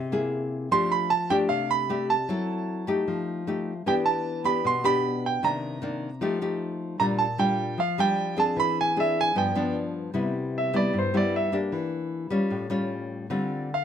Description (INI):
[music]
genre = bossa nova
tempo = 152 BPM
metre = 4/4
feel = straight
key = C major from 10.1 s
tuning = A4 = 440 Hz
[part]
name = clear concert grand piano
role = melody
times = 0.0-13.8 s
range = C5 to C6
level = -25 LUFS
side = right 5 dB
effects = none
[part]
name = nylon-string guitar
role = accompaniment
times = 0.0-13.8 s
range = G2 to A4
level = -26 LUFS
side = left 3 dB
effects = none
[sound]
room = light reverb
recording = close, detailed microphones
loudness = -24 LUFS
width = side -8 dB against mid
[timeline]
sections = 0.0-10.1 A section; 10.1-13.8 B section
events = grand piano solo 10.1-13.8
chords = 0.0 C7b13; 0.7 F69; 2.3 F#m7b5; 3.1 F9; 3.9 Em7; 5.4 Cm9; 6.2 F9; 7.0 Bb6; 8.6 E7b13; 9.4 G7; 10.1 Cmaj7; 11.7 Em7b5; 12.5 Aaug7; 13.3 Dm11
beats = 0.31 | 0.70 1.10 1.49 1.88 | 2.28 2.67 3.06 3.46 | 3.85 4.24 4.64 5.03 | 5.42 5.82 6.21 6.60 | 7.00 7.39 7.78 8.18 | 8.57 8.96 9.36 9.75 | 10.14 10.54 10.93 11.32 | 11.72 12.11 12.50 12.90 | 13.29 13.68